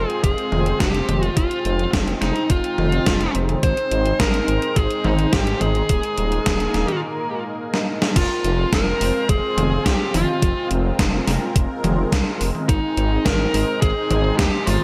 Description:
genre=synthwave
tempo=106 BPM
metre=4/4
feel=straight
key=F minor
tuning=A4 = 443 Hz
part: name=bluesy overdriven lead guitar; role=melody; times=0.0-14.8 s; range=Eb4 to C5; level=-25 LUFS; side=equal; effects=distortion, delay
part: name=lush unison pad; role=sustained chords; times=0.0-14.8 s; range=Ab3 to C5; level=-29 LUFS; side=equal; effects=chorus, phaser, sidechain pumping
part: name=detuned saw bass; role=bass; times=0.0-14.8 s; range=Eb1 to Eb2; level=-25 LUFS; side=equal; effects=chorus, tube saturation, sidechain pumping
part: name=gated 80s digital drum machine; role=drums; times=0.1-14.8 s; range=crash cymbal, hi-hat, snare drum, toms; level=-26 LUFS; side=equal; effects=gated reverb, gated reverb snare, overdrive
part: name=electronic kick drum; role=drums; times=0.2-14.5 s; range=none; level=-23 LUFS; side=equal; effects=overdrive
room=light reverb, digital ambience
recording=none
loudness=-20 LUFS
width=mono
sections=0.0-8.2 A section; 8.2-14.8 B section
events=break 7.0-8.2; drum fill 7.7-8.2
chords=0.0 Fm; 3.6 Ab; 5.9 Ebsus4; 8.2 Fm; 12.7 Ab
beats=0.24 0.80 | 1.37 1.94 2.50 3.07 | 3.63 4.20 4.76 5.33 | 5.90 6.46 7.03 7.59 | 8.16 8.73 9.29 9.86 | 10.43 10.99 11.56 12.12 | 12.69 13.26 13.82 14.39

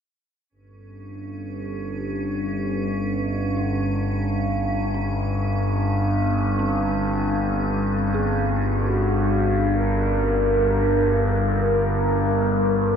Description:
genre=dark ambient drone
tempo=free time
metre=none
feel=none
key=unclear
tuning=A4 = 443 Hz
part: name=overtone-sweeping drone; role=drone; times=1.0-13.0 s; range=G1 to G2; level=-22 LUFS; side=equal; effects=chorus, built-in reverb, phaser
part: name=icy glass pad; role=texture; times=1.1-13.0 s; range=Db4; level=-33 LUFS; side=right 2 dB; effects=chorus, built-in reverb
part: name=dark detuned synth bell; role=arpeggios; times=3.6-13.0 s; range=C4 to Ab4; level=-36 LUFS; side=equal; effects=none
part: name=mellow horn-like synth lead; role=melody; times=8.8-13.0 s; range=F#4 to A#4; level=-23 LUFS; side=right 1 dB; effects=analog chorus, tape echo
room=wet huge ambient reverb, RT60 7.8 s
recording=in a vast, echoing space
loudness=-20 LUFS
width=side -7 dB against mid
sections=0.5-13.0 A section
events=fade-out on ambient pad 0.5-13.0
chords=0.5 Eb7/G; 7.9 F# (rootless)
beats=free time

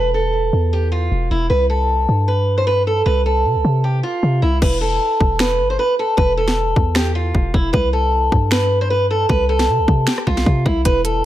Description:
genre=hip hop, trap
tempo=154 BPM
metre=4/4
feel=half-time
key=unclear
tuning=A4 = 441 Hz
part: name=picked old ladder-braced acoustic guitar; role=melody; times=0.0-11.2 s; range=E4 to C5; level=-18 LUFS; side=right 1 dB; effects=low-pass filter
part: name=warm 808-style bass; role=bass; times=0.0-11.2 s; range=E1 to C3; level=-18 LUFS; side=equal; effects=none
part: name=trap drum kit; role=drums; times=4.6-11.1 s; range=crash cymbal, finger snaps, hi-hat, kick drum, rim click, snare drum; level=-18 LUFS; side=equal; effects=none
room=light reverb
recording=none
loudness=-14 LUFS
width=side -13 dB against mid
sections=0.0-4.6 A section; 4.6-11.2 B section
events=hi-hats muted 4.6-10.9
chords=0.0 N.C.; 1.5 C5; 4.6 E5; 7.7 C5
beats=0.33 0.72 1.11 | 1.50 1.89 2.28 2.67 | 3.06 3.45 3.84 4.23 | 4.62 5.01 5.40 5.79 | 6.18 6.57 6.96 7.35 | 7.74 8.13 8.52 8.90 | 9.29 9.69 10.07 10.46 | 10.85 11.24

